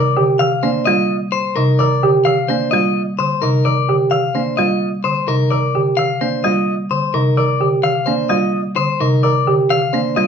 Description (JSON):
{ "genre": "classical, minimalist pattern music", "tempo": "129 BPM", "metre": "4/4", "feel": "straight", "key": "Eb major", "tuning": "A4 = 440 Hz", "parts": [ { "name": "clean electric guitar", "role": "melody", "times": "0.0-10.3 s", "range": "Bb4 to F5", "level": "-18 LUFS", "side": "left 8 dB", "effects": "none" }, { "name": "folk marimba with hard mallets", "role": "accompaniment", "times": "0.0-10.3 s", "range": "C3 to Bb3", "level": "-18 LUFS", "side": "right 1 dB", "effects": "none" }, { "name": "dark baby grand piano", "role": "arpeggios", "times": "0.0-10.3 s", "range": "D4 to Bb4", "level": "-19 LUFS", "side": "right 6 dB", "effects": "none" } ], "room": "moderate large studio reverb, RT60 0.9 s", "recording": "heard from further back in the room", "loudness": "-14 LUFS", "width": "side -7 dB against mid", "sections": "0.0-10.3 A section", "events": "none", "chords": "0.0 Ebmaj9" }